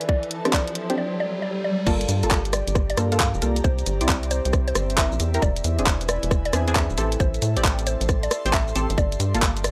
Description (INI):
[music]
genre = UK garage, two-step garage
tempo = 135 BPM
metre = 4/4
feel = swing 65% on 16ths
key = G dorian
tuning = A4 = 440 Hz
[part]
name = mallet-like synth pluck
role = melody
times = 0.0-9.7 s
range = C5 to F5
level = -32 LUFS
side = equal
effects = chorus, vintage 12-bit sampler grit, tape echo
[part]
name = garage drum kit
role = drums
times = 0.0-9.7 s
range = crash cymbal, handclaps, hi-hat, rim click, shaker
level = -28 LUFS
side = equal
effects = overdrive
[part]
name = riser and swell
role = sound effects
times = 0.0-1.9 s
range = none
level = -32 LUFS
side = equal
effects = none
[part]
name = airy breathy pad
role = texture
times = 0.0-9.7 s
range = C4 to C6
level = -36 LUFS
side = equal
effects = chorus, sidechain pumping
[part]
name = electronic kick drum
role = drums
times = 0.1-9.5 s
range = none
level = -25 LUFS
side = equal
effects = overdrive
[part]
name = punchy chord stab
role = stabs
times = 0.5-9.5 s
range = Bb3 to D5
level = -31 LUFS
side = equal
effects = chorus, phaser, tape echo
[part]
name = rubbery square bass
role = bass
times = 1.9-9.7 s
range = D1 to A2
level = -27 LUFS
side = equal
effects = none
[sound]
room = little or no reverb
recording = none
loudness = -22 LUFS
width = mono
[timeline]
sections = 0.0-1.9 A section; 1.9-9.7 B section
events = build-up 0.0-1.9; riser 0.0-1.9; filter sweep on synth stab 0.0-1.9; swell 1.0-1.9; drop 1.9-9.7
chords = 0.0 Am7; 1.9 Gm9; 3.6 C7; 5.4 E7b13; 7.0 Am7; 9.0 Gm9